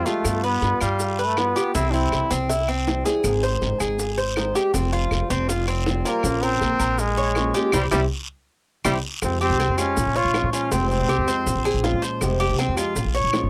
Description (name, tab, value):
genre	latin, Cuban son and guajira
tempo	160 BPM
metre	4/4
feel	straight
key	F minor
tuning	A4 = 437 Hz
part	brilliant trombone	melody	0.0-2.3, 6.1-12.0 s	G3 to F4	-26 LUFS	equal	none
part	nylon-string guitar	accompaniment	0.0-13.5 s	C3 to Ab4	-32 LUFS	equal	none
part	Cuban tres	arpeggios	0.0-13.5 s	C4 to Db5	-27 LUFS	equal	none
part	upright bass	bass	0.0-13.5 s	F1 to Bb2	-28 LUFS	equal	transformer saturation
part	bongos	percussion	0.1-13.5 s	none	-33 LUFS	equal	none
part	guiro	percussion	0.1-13.5 s	none	-37 LUFS	equal	none
part	maracas	percussion	0.1-13.5 s	none	-37 LUFS	equal	none
part	claves	percussion	0.2-13.5 s	none	-37 LUFS	equal	none
room	light reverb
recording	dry, gritty hardware recording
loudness	-22 LUFS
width	mono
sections	0.0-9.2 A section; 9.2-13.5 B section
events	drum fill 2.5-3.2, 8.1-9.2; band accent 7.7-9.2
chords	0.2 G7; 1.7 C; 3.2 Ab; 4.7 Fsus2; 6.2 Bbm; 7.7 C; 9.2 Fmadd9; 10.0 Bbm7; 10.7 Fmadd9; 11.5 Bbm7; 12.2 Fmadd9; 13.0 Bbm7